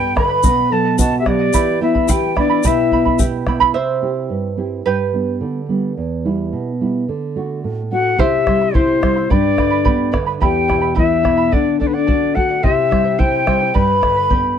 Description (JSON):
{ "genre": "andean folk, Andean ensemble", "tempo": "108 BPM", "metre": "2/4", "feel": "straight", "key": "unclear", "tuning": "A4 = 440 Hz", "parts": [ { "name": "quena", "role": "melody", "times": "0.0-3.2, 7.9-14.5 s", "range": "B4 to B5", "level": "-18 LUFS", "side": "left 1 dB", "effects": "none" }, { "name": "charango", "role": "accompaniment", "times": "0.0-5.7, 8.2-14.6 s", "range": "E4 to C6", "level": "-22 LUFS", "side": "right 9 dB", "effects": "none" }, { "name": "nylon-string guitar", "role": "accompaniment", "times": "0.0-14.6 s", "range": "E2 to B4", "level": "-20 LUFS", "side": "right 4 dB", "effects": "none" }, { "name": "mellow hollow polished pan flute", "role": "second line", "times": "0.2-3.2, 7.9-14.3 s", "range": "D4 to D#5", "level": "-20 LUFS", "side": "left 10 dB", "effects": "none" }, { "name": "bombo", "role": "percussion", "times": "0.2-3.7, 8.2-14.4 s", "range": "none", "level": "-19 LUFS", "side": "equal", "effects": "none" }, { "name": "egg shaker", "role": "percussion", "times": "0.4-3.3 s", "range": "none", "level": "-26 LUFS", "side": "left 16 dB", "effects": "none" } ], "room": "studio ambience", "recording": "dry, close 1970s-style studio recording", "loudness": "-14 LUFS", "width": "side -8 dB against mid", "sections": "0.0-3.8 A section; 3.8-8.2 B section; 8.2-14.6 C section", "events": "charango solo 3.8-8.2", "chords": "0.4 B; 1.5 Em; 3.8 C; 4.9 G; 6.0 Em; 7.1 D; 8.2 C; 9.3 G; 10.4 Em; 11.5 D; 12.6 C; 13.7 G" }